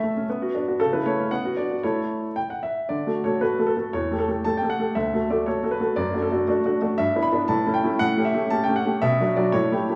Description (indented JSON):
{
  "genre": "classical-period piano sonatina",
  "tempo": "117 BPM",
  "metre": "2/4",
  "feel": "rubato",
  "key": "D major",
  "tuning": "A4 = 440 Hz",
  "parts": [
    { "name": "clear baby grand piano", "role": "solo", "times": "0.0-10.0 s", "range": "D2 to B5", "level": "-24 LUFS", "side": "equal", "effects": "none" }
  ],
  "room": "wet recital hall reverb, RT60 1.4 s",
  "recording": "small room reverb",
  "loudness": "-23 LUFS",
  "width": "mono",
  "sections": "0.0-2.9 A section; 2.9-10.0 B section",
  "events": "none",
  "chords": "0.3 Bm; 0.8 A/C#; 1.3 Bm; 1.8 A; 2.9 D; 3.9 A5/E; 5.0 D; 6.0 D/F#; 7.0 Em7/G; 7.5 A; 8.0 A7; 9.0 Bm"
}